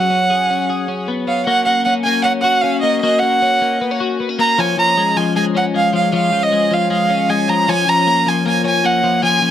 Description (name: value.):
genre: indie pop.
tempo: 154 BPM.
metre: 4/4.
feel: straight.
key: unclear.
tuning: A4 = 440 Hz.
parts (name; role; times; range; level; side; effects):
rich violin; melody; 0.0-9.5 s; Eb5 to Bb5; -15 LUFS; right 2 dB; none.
twelve-string electric guitar; arpeggios; 0.0-9.5 s; F3 to Ab4; -18 LUFS; left 4 dB; analog chorus.
room: light reverb.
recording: none.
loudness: -13 LUFS.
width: side -10 dB against mid.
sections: 0.0-1.5 A section; 1.5-9.5 B section.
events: none.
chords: 0.0 Db7sus4; 1.5 Bmaj7sus2 (rootless); 4.6 Bbm7; 7.7 Gbmaj7.